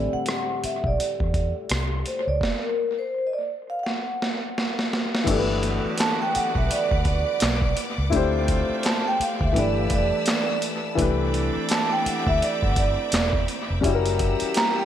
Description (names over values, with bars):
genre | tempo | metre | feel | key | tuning
R&B, neo-soul | 84 BPM | 4/4 | swing 59% on 16ths | G major | A4 = 440 Hz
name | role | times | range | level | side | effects
vibraphone with soft mallets | melody | 0.0-14.8 s | Bb4 to A#5 | -27 LUFS | right 2 dB | analog delay
dark upright piano | accompaniment | 0.0-14.8 s | A2 to C5 | -27 LUFS | left 5 dB | none
vintage muted fingered electric bass | bass | 0.0-14.4 s | E1 to E2 | -26 LUFS | equal | none
boom bap sampler-style drum kit | drums | 0.3-14.8 s | crash cymbal, handclaps, hi-hat, kick drum, rim click, snare drum | -26 LUFS | equal | analog delay
bright studio string section | sustained chords | 5.3-14.8 s | G3 to E6 | -33 LUFS | left 1 dB | none
warm horn section | stabs | 5.3-14.8 s | C3 to A4 | -33 LUFS | right 7 dB | analog delay
room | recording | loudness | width
light reverb, small room reverb | echo-heavy mix | -21 LUFS | side -10 dB against mid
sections
0.0-5.3 A section; 5.3-14.8 B section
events
drum fill 3.8-5.3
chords
0.0 Am7; 2.4 N.C.; 5.3 Gmaj7; 8.1 Dm9; 9.6 G13; 11.0 Cmaj9; 13.8 F#7b9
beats
0.27 0.98 1.70 | 2.41 3.12 3.84 4.55 | 5.27 5.98 6.70 7.41 | 8.12 8.84 9.55 10.27 | 10.98 11.70 12.41 13.12 | 13.84 14.55